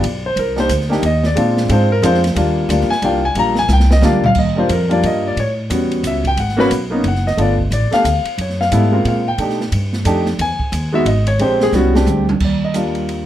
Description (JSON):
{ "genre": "jazz piano trio", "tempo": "179 BPM", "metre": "3/4", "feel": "swing 62% on 8ths", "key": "Eb major", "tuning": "A4 = 439 Hz", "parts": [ { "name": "warm concert grand piano", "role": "melody", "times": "0.0-13.3 s", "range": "G3 to Bb5", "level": "-16 LUFS", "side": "left 1 dB", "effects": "plate reverb" }, { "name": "upright bass", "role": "bass", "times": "0.0-13.2 s", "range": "Gb1 to B2", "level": "-18 LUFS", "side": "equal", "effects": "none" }, { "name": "open jazz drum kit", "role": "drums", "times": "0.0-13.2 s", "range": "crash cymbal, hi-hat, kick drum, ride cymbal, snare drum, toms", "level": "-23 LUFS", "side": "right 2 dB", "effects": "none" } ], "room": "light reverb", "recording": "none", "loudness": "-13 LUFS", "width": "side -12 dB against mid", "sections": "0.0-4.4 A section; 4.4-12.4 A section", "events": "grand piano solo 0.0-12.4; drum fill 3.7-4.4, 11.7-12.4", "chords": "0.4 Cm7; 1.4 Bb7; 2.4 Ebmaj7; 5.4 A13; 6.4 Abm11; 7.4 G9; 8.4 Gbmaj9#11; 9.4 B7alt; 10.4 Emaj7; 11.4 Bb13; 12.4 Ebmaj7" }